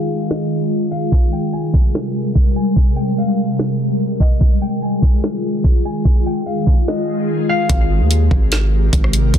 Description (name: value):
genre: hip hop, atmospheric cloud-rap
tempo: 146 BPM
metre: 4/4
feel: half-time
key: Ab major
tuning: A4 = 440 Hz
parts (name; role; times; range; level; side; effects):
- concert harp; melody; 0.0-9.2 s; Eb5 to Ab5; -27 LUFS; left 3 dB; ping-pong delay
- ethereal airy pad; sustained chords; 0.0-9.4 s; C3 to Bb4; -19 LUFS; left 1 dB; ensemble chorus, built-in reverb, sidechain pumping
- smooth R&B drum kit; drums; 0.3-9.4 s; hi-hat, kick drum, rim click, snare drum; -14 LUFS; equal; none
- long sustained 808-style bass; bass; 7.7-9.4 s; Ab1 to Eb2; -15 LUFS; equal; none
room: little or no reverb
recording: dense, heavily limited modern master, low-pass filter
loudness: -14 LUFS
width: side -9 dB against mid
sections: 0.0-7.7 A section; 7.7-9.4 B section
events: filter sweep 0.0-7.7; drums muted 0.7-1.1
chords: 0.0 Fm7; 1.1 Abmaj9; 4.4 Fm7; 7.7 Abmaj9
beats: 0.30 0.71 | 1.12 1.53 1.94 2.35 | 2.76 3.17 3.59 4.00 | 4.41 4.82 5.23 5.64 | 6.05 6.46 6.87 7.28 | 7.70 8.11 8.52 8.93 | 9.34